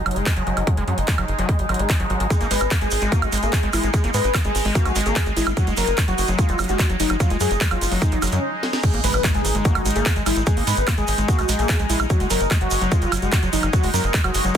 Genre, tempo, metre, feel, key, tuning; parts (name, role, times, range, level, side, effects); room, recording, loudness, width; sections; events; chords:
psychedelic trance; 147 BPM; 4/4; straight; A4 = 440 Hz
bubbling stepped-filter texture; sustained chords; 0.0-14.6 s; G#3 to D#4; -28 LUFS; equal; chorus, built-in reverb, sidechain pumping
overdriven acid bass; riff; 0.0-14.6 s; F#3 to A#3; -28 LUFS; equal; distortion, auto-pan, cassette tape, sidechain pumping, tape echo
tight sequencer bass; bass; 0.1-14.5 s; F#1 to G#2; -24 LUFS; equal
techno drum kit; drums; 0.1-14.6 s; crash cymbal, handclaps, hi-hat, snare drum, woodblock; -26 LUFS; right 3 dB
electronic kick drum; drums; 0.3-14.6 s; -20 LUFS; equal
wide unison lead; melody; 2.3-14.6 s; C#4 to B4; -25 LUFS; left 1 dB; phaser, sidechain pumping, tape echo
egg shaker; percussion; 2.3-14.6 s; -33 LUFS; right 6 dB
impact; sound effects; 8.8-10.5 s; -30 LUFS; equal
light reverb; dense, heavily limited modern master; -18 LUFS; side -9 dB against mid
0.0-8.8 A section; 8.8-14.6 B section
filter sweep on acid bass 0.0-8.8; break 8.4-8.8; drum fill 8.6; drop 8.8-14.6; impact 8.8-10.5
0.0 D#madd11/F#; 2.3 G#5; 5.6 F#maj7sus2; 8.8 G#5; 12.1 F#5